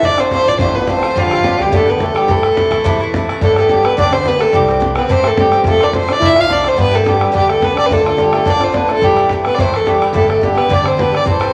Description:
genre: celtic folk, Celtic reel.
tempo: 214 BPM.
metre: 4/4.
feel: swing 53% on 8ths.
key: unclear.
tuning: A4 = 440 Hz.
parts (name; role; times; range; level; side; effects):
dark fiddle; melody; 0.0-11.5 s; F4 to F5; -16 LUFS; equal; none.
clear trombone; second line; 0.0-11.5 s; F3 to F4; -23 LUFS; equal; none.
Irish bouzouki; accompaniment; 0.0-11.5 s; G2 to B4; -22 LUFS; equal; none.
upright bass; bass; 0.0-11.5 s; G1 to G2; -26 LUFS; equal; none.
bodhran; percussion; 0.0-11.5 s; none; -22 LUFS; equal; none.
room: wet large studio reverb, RT60 0.9 s.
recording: vinyl crackle.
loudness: -13 LUFS.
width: mono.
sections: 0.0-3.4 A section; 3.4-11.5 B section.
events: none.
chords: 0.0 Dm7/A; 1.2 Gadd9; 2.3 Am; 3.4 Gadd9; 4.5 C; 5.7 F; 6.8 G; 7.9 Dm; 9.0 Am; 10.1 G.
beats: | 0.03 0.31 0.59 0.87 | 1.15 1.44 1.72 2.00 | 2.28 2.56 2.84 3.12 | 3.41 3.69 3.97 4.25 | 4.53 4.81 5.09 5.37 | 5.65 5.93 6.22 6.50 | 6.78 7.06 7.34 7.62 | 7.90 8.18 8.46 8.74 | 9.02 9.30 9.58 9.86 | 10.14 10.42 10.70 10.98 | 11.26.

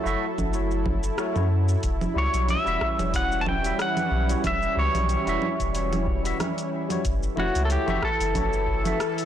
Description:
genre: sunset chillout.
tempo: 92 BPM.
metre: 4/4.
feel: swing 55% on 16ths.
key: E dorian.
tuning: A4 = 440 Hz.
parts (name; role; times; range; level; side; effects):
barky tine electric piano; accompaniment; 0.0-9.0 s; G3 to E5; -32 LUFS; moving between left 9 dB and right 6 dB; auto-pan, low-pass filter, ping-pong delay.
lush unison pad; sustained chords; 0.0-9.2 s; E3 to A4; -30 LUFS; equal; chorus.
warm sub bass; bass; 0.1-8.9 s; E1 to F#2; -26 LUFS; equal; transformer saturation.
deep house drum kit; drums; 0.1-9.2 s; congas, hi-hat, rim click, shaker; -32 LUFS; right 2 dB; soft clipping on snare.
electronic kick drum; drums; 0.4-8.8 s; none; -31 LUFS; equal; overdrive.
pedal steel guitar; melody; 2.2-9.2 s; F#4 to A5; -27 LUFS; equal; tape echo.
room: light reverb, digital ambience.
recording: blown-out, overdriven recording, overdrive.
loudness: -22 LUFS.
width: side -10 dB against mid.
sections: 0.0-9.2 A section.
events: none.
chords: 0.0 F#m7; 1.8 Em69; 7.1 F#m7.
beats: 0.53 1.18 | 1.83 2.48 3.14 3.79 | 4.44 5.09 5.75 6.40 | 7.05 7.70 8.36 9.01.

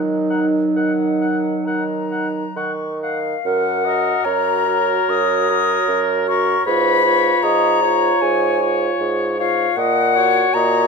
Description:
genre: classical, slow romantic movement for wind quintet.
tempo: 64-79 BPM.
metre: 4/4.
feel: rubato.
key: Eb minor, F# major from 3.5 s.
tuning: A4 = 440 Hz.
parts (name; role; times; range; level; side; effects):
dark clarinet; accompaniment; 0.0-10.9 s; Gb3 to D#5; -22 LUFS; right 9 dB; none.
mellow French horn; accompaniment; 0.0-10.9 s; Eb4 to F#4; -23 LUFS; equal; none.
mellow bassoon; bass; 0.0-10.9 s; F#2 to Eb3; -22 LUFS; right 4 dB; none.
concert flute; melody; 0.3-10.9 s; F5 to D#6; -20 LUFS; left 10 dB; none.
warm oboe; second line; 0.3-10.9 s; A#4 to Gb5; -24 LUFS; left 4 dB; none.
room: moderate recital hall reverb, RT60 1.7 s.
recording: close, detailed microphones.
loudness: -15 LUFS.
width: side -4 dB against mid.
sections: 0.0-3.5 A section; 3.5-10.9 B section.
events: none.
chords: 0.0 Ebm; 3.5 F#; 6.7 C#7/G#; 9.8 F#/A#.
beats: 0.76 1.66 2.56 | 3.46 4.26 5.09 5.89 | 6.66 7.43 8.21 9.01 | 9.77 10.55.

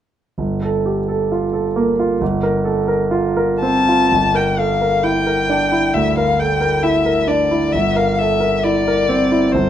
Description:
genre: classical, impressionist duo for violin and grand piano.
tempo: 66 BPM.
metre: 4/4.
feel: rubato.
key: G dorian.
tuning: A4 = 440 Hz.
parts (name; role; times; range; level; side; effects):
clear concert grand piano; accompaniment; 0.4-9.7 s; G1 to Bb4; -16 LUFS; right 2 dB; none.
rich violin; melody; 3.6-9.7 s; C5 to A5; -17 LUFS; left 5 dB; none.
room: light reverb.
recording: none.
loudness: -14 LUFS.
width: side -10 dB against mid.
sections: 0.4-4.1 A section; 4.1-9.7 B section.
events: none.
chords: 0.4 Gm9; 2.2 Bbsus2/G; 4.1 Gm6; 7.7 C9/G.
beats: | 0.37 1.31 2.21 3.12 | 4.12 5.04 5.95 6.83 | 7.73 8.64 9.52.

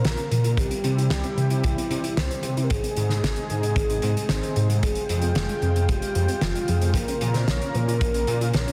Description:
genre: synthwave.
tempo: 113 BPM.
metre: 4/4.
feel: straight.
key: F minor.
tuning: A4 = 443 Hz.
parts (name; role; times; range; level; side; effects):
soft octave-layered synth lead; melody; 0.0-8.7 s; E4 to Db5; -31 LUFS; equal; chorus, phaser, tape echo.
lush unison pad; sustained chords; 0.0-8.7 s; C3 to G5; -34 LUFS; equal; chorus, sidechain pumping.
unison pluck; arpeggios; 0.0-8.7 s; Eb3 to C5; -37 LUFS; equal; none.
detuned saw bass; bass; 0.0-8.7 s; F1 to C3; -26 LUFS; equal; chorus, sidechain pumping.
loose indie drum kit; drums; 0.0-8.7 s; hi-hat, snare drum; -32 LUFS; equal; none.
kick drum; drums; 0.6-8.1 s; none; -30 LUFS; equal; none.
room: moderate lush hall reverb, RT60 2.4 s.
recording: dense, heavily limited modern master.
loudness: -24 LUFS.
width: mono.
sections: 0.0-8.7 A section.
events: none.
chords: 0.0 Bbm; 0.6 C; 2.7 Ab; 4.8 Fmadd9; 7.0 Bbm.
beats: 0.05 | 0.58 1.11 1.64 2.17 | 2.70 3.23 3.77 4.29 | 4.83 5.36 5.89 6.42 | 6.95 7.48 8.01 8.54.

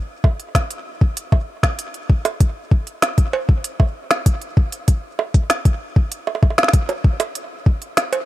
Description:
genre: IDM.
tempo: 97 BPM.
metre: 4/4.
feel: straight.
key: none.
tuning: none.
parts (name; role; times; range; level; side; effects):
electronic kick drum; drums; 0.2-7.8 s; none; -14 LUFS; equal; overdrive.
organic electronic drum kit; drums; 0.2-8.2 s; bongos, cowbell, hi-hat, snare drum; -21 LUFS; right 2 dB; overdrive.
room: little or no reverb.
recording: none.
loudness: -16 LUFS.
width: side -15 dB against mid.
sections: 0.0-8.3 A section.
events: none.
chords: none.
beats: 0.55 1.17 1.79 | 2.40 3.02 3.64 4.26 | 4.88 5.50 6.12 6.74 | 7.35 7.97.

